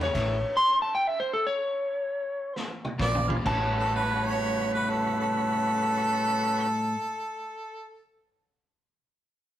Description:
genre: electric blues shuffle.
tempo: 126-158 BPM.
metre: 4/4.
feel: swing 64% on 8ths.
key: A mixolydian.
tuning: A4 = 440 Hz.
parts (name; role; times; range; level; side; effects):
lightly driven lead guitar; melody; 0.0-6.7 s; A4 to C6; -26 LUFS; left 1 dB; none.
tonewheel organ; accompaniment; 0.0-0.1, 3.3-6.7 s; C#4 to C#5; -32 LUFS; right 2 dB; slow rotary speaker.
crunchy overdriven guitar; riff; 0.0-0.4, 3.0-7.0 s; E2 to F#4; -31 LUFS; left 1 dB; spring reverb.
vintage muted fingered electric bass; bass; 0.0-0.4, 3.0-6.7 s; A1 to Bb1; -32 LUFS; equal; none.
vintage drum kit; drums; 0.0-3.6 s; crash cymbal, kick drum, ride cymbal, snare drum, toms; -35 LUFS; equal; none.
clear harmonica; second line; 3.0-8.0 s; A4 to D5; -28 LUFS; right 1 dB; none.
room: moderate stone room reverb, RT60 1.0 s.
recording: rough rehearsal-room recording.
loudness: -24 LUFS.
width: side -12 dB against mid.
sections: 0.0-3.5 A section; 3.5-7.3 B section.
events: slowing down 0.1-3.5; drum fill 2.5-3.5.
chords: 0.1 A; 3.0 Bb9; 3.5 A13.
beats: | 0.15 0.53 0.91 1.31 | 1.71 2.12 2.55 2.99 | 3.45 3.93 4.40 4.88 | 5.35 5.83 6.30 6.78.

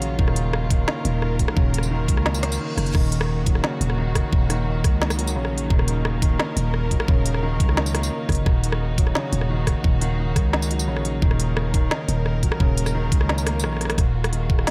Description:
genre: half-time drum and bass.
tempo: 174 BPM.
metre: 4/4.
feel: half-time.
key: Eb minor.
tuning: A4 = 440 Hz.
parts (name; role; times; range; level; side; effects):
dark chamber string section; sustained chords; 0.0-14.7 s; Eb3 to Bb4; -33 LUFS; equal; sidechain pumping.
felt-muted upright piano; arpeggios; 0.0-14.7 s; Db3 to Bb3; -30 LUFS; equal; dub echo.
growling 808-style bass; bass; 0.0-14.7 s; Eb1 to Db2; -26 LUFS; equal; none.
organic electronic drum kit; drums; 0.0-14.7 s; crash cymbal, hi-hat, rim click, snare drum, tambourine; -30 LUFS; equal; none.
electronic kick drum; drums; 0.2-14.6 s; none; -23 LUFS; equal; none.
reverse cymbal; sound effects; 2.4-2.9 s; none; -40 LUFS; equal; none.
metallic inharmonic drone; texture; 14.2-14.7 s; Ab4; -45 LUFS; equal; none.
room: little or no reverb.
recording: none.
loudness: -22 LUFS.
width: mono.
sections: 0.0-14.0 A section.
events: drop 0.0-14.0; reverse cymbal 2.4-2.9; kick drops out 13.6-14.0; drum fill 13.6-14.0.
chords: 0.0 Ebmadd9.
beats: | 0.19 0.53 0.88 1.22 | 1.57 1.91 2.26 2.60 | 2.95 3.29 3.64 3.98 | 4.33 4.67 5.01 5.36 | 5.71 6.05 6.39 6.74 | 7.08 7.43 7.77 8.12 | 8.46 8.81 9.15 9.50 | 9.84 10.19 10.53 10.88 | 11.22 11.57 11.91 12.26 | 12.60 12.95 13.29 13.64 | 13.98 14.33 14.67.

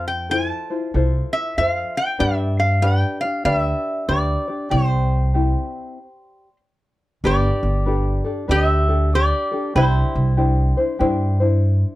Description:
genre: Hawaiian.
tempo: 95 BPM.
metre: 4/4.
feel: swing 63% on 8ths.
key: C major.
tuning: A4 = 437 Hz.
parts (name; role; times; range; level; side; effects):
metal-body resonator slide guitar; melody; 0.0-11.0 s; E4 to A5; -22 LUFS; equal; none.
tenor ukulele; accompaniment; 0.0-12.0 s; C4 to D5; -24 LUFS; left 2 dB; none.
upright bass; bass; 0.0-11.8 s; G1 to G2; -19 LUFS; equal; none.
room: light reverb.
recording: dark, warm production.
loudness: -17 LUFS.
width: side -16 dB against mid.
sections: 0.0-7.2 A section; 7.2-12.0 B section.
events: stop 6.0-7.2.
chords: 0.0 Fmaj7; 2.2 G; 4.7 C; 7.2 Gadd9; 9.7 Cadd9.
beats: 0.31 0.94 1.57 | 2.20 2.83 3.46 4.09 | 4.72 5.35 5.97 6.60 | 7.23 7.86 8.49 9.12 | 9.75 10.38 11.01 11.63.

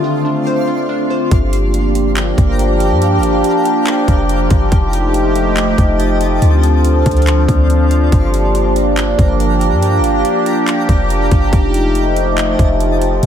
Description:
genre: hip hop, atmospheric cloud-rap.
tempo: 141 BPM.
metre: 4/4.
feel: half-time.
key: G minor.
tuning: A4 = 439 Hz.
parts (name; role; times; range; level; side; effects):
sweeping resonant pad; sustained chords; 0.0-13.3 s; D3 to A4; -14 LUFS; equal; chorus, phaser, sidechain pumping.
glassy wavetable pluck; arpeggios; 0.0-1.3 s; D4 to C5; -20 LUFS; right 2 dB; chorus, tape echo.
twinkling granular texture; texture; 0.0-13.3 s; F4 to C6; -25 LUFS; left 1 dB; built-in reverb.
clean 808-style bass; bass; 1.3-13.3 s; F1 to G2; -15 LUFS; equal; none.
trap drum kit; drums; 1.3-13.3 s; handclaps, hi-hat, kick drum; -16 LUFS; equal; none.
room: light reverb.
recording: none.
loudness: -11 LUFS.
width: side -9 dB against mid.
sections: 0.0-1.3 A section; 1.3-13.3 B section.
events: none.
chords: 0.0 Dm7; 1.3 Gm7; 4.7 F9; 6.4 Dm7; 8.1 Gm7; 11.5 F9.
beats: 0.04 0.46 0.89 | 1.31 1.74 2.17 2.59 | 3.02 3.44 3.87 4.29 | 4.72 5.14 5.57 6.00 | 6.42 6.85 7.27 7.70 | 8.12 8.55 8.97 9.40 | 9.82 10.25 10.68 11.10 | 11.53 11.95 12.38 12.80 | 13.23.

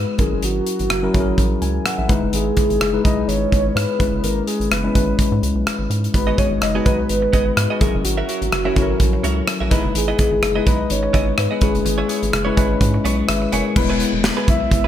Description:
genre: 1980s-style pop.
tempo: 126 BPM.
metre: 4/4.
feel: swing 55% on 16ths.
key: unclear.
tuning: A4 = 443 Hz.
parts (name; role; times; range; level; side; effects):
soft octave-layered synth lead; melody; 0.0-14.9 s; F#4 to E5; -23 LUFS; equal; chorus, phaser, ping-pong delay.
tine electric piano; accompaniment; 0.0-14.9 s; F#3 to G#5; -22 LUFS; left 4 dB; lush chorus.
rubbery square bass; bass; 0.0-14.9 s; E1 to G#2; -23 LUFS; right 1 dB; none.
modern studio drum kit; drums; 0.2-14.8 s; crash cymbal, hi-hat, kick drum, rim click, snare drum; -20 LUFS; equal; none.
direct-recorded clean electric guitar; riff; 6.1-14.9 s; B3 to E5; -27 LUFS; right 5 dB; lush chorus.
room: light reverb.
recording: bright 1980s-style digital production.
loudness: -16 LUFS.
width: side -11 dB against mid.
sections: 0.0-13.8 A section; 13.8-14.9 B section.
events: tine electric piano fill 1.4-2.3, 13.0-13.8.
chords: 0.2 F#7; 2.1 Emaj7; 4.0 C#m7; 6.1 G#m7; 7.8 F#7; 9.7 Emaj7; 11.6 C#m7; 13.8 E.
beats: | 0.43 0.90 1.38 1.86 | 2.33 2.81 3.29 3.76 | 4.24 4.71 5.19 5.67 | 6.14 6.62 7.09 7.57 | 8.05 8.52 9.00 9.48 | 9.95 10.43 10.90 11.38 | 11.86 12.33 12.81 13.29 | 13.76 14.24 14.71.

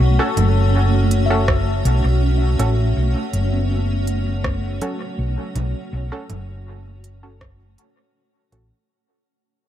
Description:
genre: ambient dub.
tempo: 81 BPM.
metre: 4/4.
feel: straight.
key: unclear.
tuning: A4 = 444 Hz.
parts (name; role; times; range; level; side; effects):
granular cloud pad; sustained chords; 0.0-8.9 s; A3 to F#5; -25 LUFS; right 1 dB; built-in reverb.
handpan; arpeggios; 0.0-8.0 s; F#3 to E5; -29 LUFS; left 7 dB; dub echo.
hollow-body short-scale fingered electric bass; bass; 0.0-8.7 s; F#1 to B1; -18 LUFS; equal; none.
filtered dub chord stab; stabs; 0.2-8.7 s; C#4 to A4; -27 LUFS; right 1 dB; chorus, dub echo.
organic electronic drum kit; drums; 0.4-8.7 s; congas, hi-hat, rim click; -29 LUFS; right 2 dB; overdrive, dub echo.
electronic kick drum; drums; 1.5-7.6 s; none; -22 LUFS; equal; none.
room: light reverb.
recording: none.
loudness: -17 LUFS.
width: side -11 dB against mid.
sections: 0.0-8.9 A section.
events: fade-out 1.0-8.9.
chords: 0.0 F#m.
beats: | 0.00 0.74 1.48 2.22 | 2.96 3.70 4.45 5.18 | 5.93 6.67 7.41 8.15.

